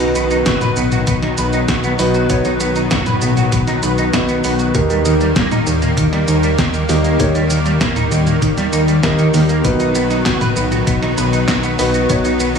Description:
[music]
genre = synthwave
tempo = 98 BPM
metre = 4/4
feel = straight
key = unclear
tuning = A4 = 440 Hz
[part]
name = lush unison pad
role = sustained chords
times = 0.0-12.6 s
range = D#3 to B3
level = -20 LUFS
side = right 1 dB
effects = chorus, sidechain pumping
[part]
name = electric guitar at the edge of break-up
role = riff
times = 0.0-12.6 s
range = D#3 to B4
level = -22 LUFS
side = right 4 dB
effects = ensemble chorus, tape echo
[part]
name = warm concert grand piano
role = stabs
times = 0.0-12.3 s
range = A#3 to C#5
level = -20 LUFS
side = left 1 dB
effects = tape echo
[part]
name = fat analog bass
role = bass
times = 0.0-12.6 s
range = D#1 to D#2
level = -18 LUFS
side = left 1 dB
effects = none
[part]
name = detuned 8-bit digital drum machine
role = drums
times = 0.0-12.6 s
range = handclaps, hi-hat, shaker, snare drum, toms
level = -20 LUFS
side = left 1 dB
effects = gated reverb
[part]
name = electronic kick drum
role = drums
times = 0.5-12.2 s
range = none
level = -22 LUFS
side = left 1 dB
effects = none
[sound]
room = light reverb, digital ambience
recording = studio reverb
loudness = -13 LUFS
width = side -6 dB against mid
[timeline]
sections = 0.0-12.6 A section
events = none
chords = 0.0 B; 4.7 D#; 9.6 B

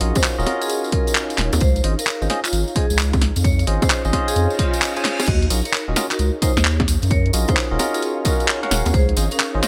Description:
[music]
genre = UK garage, two-step garage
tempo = 131 BPM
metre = 4/4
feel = swing 65% on 16ths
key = Eb dorian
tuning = A4 = 440 Hz
[part]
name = barky tine electric piano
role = stabs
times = 0.0-9.7 s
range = Db4 to Ab5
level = -27 LUFS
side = equal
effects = subtle chorus
[part]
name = saturated sub bass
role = bass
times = 0.0-9.6 s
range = Eb1 to Gb2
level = -22 LUFS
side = equal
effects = none
[part]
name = garage drum kit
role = drums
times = 0.0-9.7 s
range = bongos, crash cymbal, handclaps, hi-hat, snare drum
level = -24 LUFS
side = equal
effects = none
[part]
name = ethereal airy pad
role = texture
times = 0.0-9.7 s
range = Eb4 to F5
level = -34 LUFS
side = equal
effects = none
[part]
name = vibraphone with hard mallets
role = melody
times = 0.2-9.5 s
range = Db4 to Eb5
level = -30 LUFS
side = equal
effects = digital delay
[part]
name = electronic kick drum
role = drums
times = 0.2-9.1 s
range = none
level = -23 LUFS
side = equal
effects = none
[part]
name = tambourine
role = percussion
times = 0.2-9.7 s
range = none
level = -32 LUFS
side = equal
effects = none
[part]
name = reverse cymbal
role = sound effects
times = 4.5-5.3 s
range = none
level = -33 LUFS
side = equal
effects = none
[sound]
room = light reverb, digital ambience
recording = bright 1980s-style digital production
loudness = -19 LUFS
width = mono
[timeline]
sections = 0.0-5.3 A section; 5.3-9.7 B section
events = filter sweep on tine electric piano 0.0-5.3; reverse cymbal 4.5-5.3; drop 5.3-9.7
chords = 0.0 Ebm9; 1.6 Dbmaj7; 5.3 Ebm9; 8.9 Dbmaj7

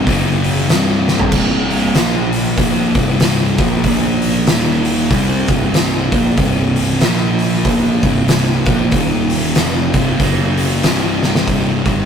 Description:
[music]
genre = stoner and doom metal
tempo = 95 BPM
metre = 4/4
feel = swing 60% on 8ths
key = C minor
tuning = A4 = 441 Hz
[part]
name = thick fuzz guitar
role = riff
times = 0.0-12.1 s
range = C2 to C4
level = -18 LUFS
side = left 5 dB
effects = distortion
[part]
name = thick fuzz guitar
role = riff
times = 0.0-12.1 s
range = C2 to C4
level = -18 LUFS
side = right 5 dB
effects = distortion
[part]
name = fuzz picked electric bass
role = bass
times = 0.0-12.1 s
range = C1 to C2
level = -22 LUFS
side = equal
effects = overdrive
[part]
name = oversized low-tuned drum kit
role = drums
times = 0.1-12.0 s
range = crash cymbal, hi-hat, kick drum, snare drum, toms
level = -16 LUFS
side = equal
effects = none
[sound]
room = light reverb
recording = rough rehearsal-room recording, tube saturation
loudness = -12 LUFS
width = side -7 dB against mid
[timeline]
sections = 0.0-11.5 A section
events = drum fill 1.0-1.3, 11.2-11.5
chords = 0.1 F#5; 0.7 C5; 2.0 Bb5; 2.6 C5; 3.9 Bb5; 4.5 Eb5; 5.1 C5; 7.0 Bb5; 7.7 C5; 8.9 Eb5; 9.6 C5; 10.2 F#5; 10.8 C5

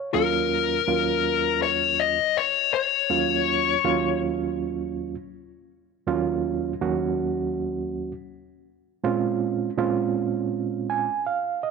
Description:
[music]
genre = blues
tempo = 81 BPM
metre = 4/4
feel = swing 55% on 16ths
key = unclear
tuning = A4 = 440 Hz
[part]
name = overdriven reed electric piano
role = accompaniment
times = 0.0-11.7 s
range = Eb2 to Ab5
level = -25 LUFS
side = right 7 dB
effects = fast tremolo
[part]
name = dark smooth lead guitar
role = melody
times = 0.1-4.2 s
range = Bb4 to Eb5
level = -22 LUFS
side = left 13 dB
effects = overdrive
[sound]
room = moderate echo chamber reverb, RT60 2.3 s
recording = 1960s-style stereo with parts hard left and right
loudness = -22 LUFS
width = side -4 dB against mid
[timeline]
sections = 0.0-11.7 A section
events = reed electric piano fill 10.5-11.7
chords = 0.1 Ebm7; 9.0 Bbm7

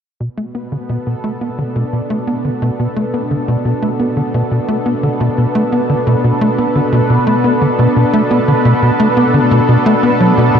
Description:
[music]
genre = ambient, sequencer-driven space music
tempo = 87 BPM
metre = 4/4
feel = straight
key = B minor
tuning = A4 = 439 Hz
[part]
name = lush unison pad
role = sustained chords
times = 0.2-10.6 s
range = B2 to A4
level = -16 LUFS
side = equal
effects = chorus, shimmer reverb
[part]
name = tight sequencer bass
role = riff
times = 0.2-10.6 s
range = B2 to B3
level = -14 LUFS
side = equal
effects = analog chorus, tape echo
[part]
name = bubbling stepped-filter texture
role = texture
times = 0.2-10.6 s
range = B4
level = -22 LUFS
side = right 1 dB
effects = chorus, built-in reverb, shimmer reverb
[sound]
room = wet huge ambient reverb, RT60 7.7 s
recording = dark, warm production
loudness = -12 LUFS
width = side -7 dB against mid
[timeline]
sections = 0.2-10.6 A section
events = fade-in on analog synth bass 0.2-10.6; fade-in on analog synth pad 0.2-10.6; fade-in on synth texture 0.2-10.6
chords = 0.2 Bm7

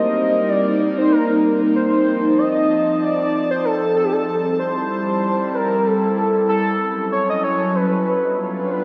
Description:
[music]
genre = IDM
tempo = 95 BPM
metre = 4/4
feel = swing 56% on 16ths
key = C dorian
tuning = A4 = 440 Hz
[part]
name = warm velvety synth lead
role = melody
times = 0.0-8.8 s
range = G4 to Eb5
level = -22 LUFS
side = equal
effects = chorus, analog delay
[part]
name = warbly tape-like pad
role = sustained chords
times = 0.0-8.8 s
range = F3 to A5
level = -22 LUFS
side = equal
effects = chorus, built-in reverb, phaser
[sound]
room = wet lush hall reverb, RT60 3.0 s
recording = dreamy mix soaked in reverb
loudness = -19 LUFS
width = mono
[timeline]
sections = 0.0-8.8 A section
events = none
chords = 0.0 Cm7; 1.8 F7; 4.3 Am7; 6.8 F#m7; 8.1 G7

